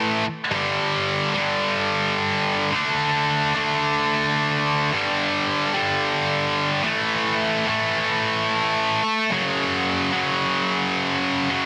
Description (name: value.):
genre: rock.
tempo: 109 BPM.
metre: 4/4.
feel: straight.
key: F# phrygian.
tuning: A4 = 440 Hz.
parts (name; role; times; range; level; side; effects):
heavy high-gain guitar; solo; 0.0-11.7 s; F#2 to D4; -22 LUFS; equal; distortion.
room: light reverb.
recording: heavily compressed radio sound.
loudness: -22 LUFS.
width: mono.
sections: 0.0-11.5 A section.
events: none.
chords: 0.0 A5; 0.5 G5; 2.7 D5; 4.9 G5; 6.8 A5; 9.3 F#5.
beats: | 0.53 1.07 1.62 2.17 | 2.72 3.27 3.82 4.36 | 4.91 5.46 6.01 6.56 | 7.11 7.65 8.20 8.75 | 9.30 9.85 10.40 10.95 | 11.50.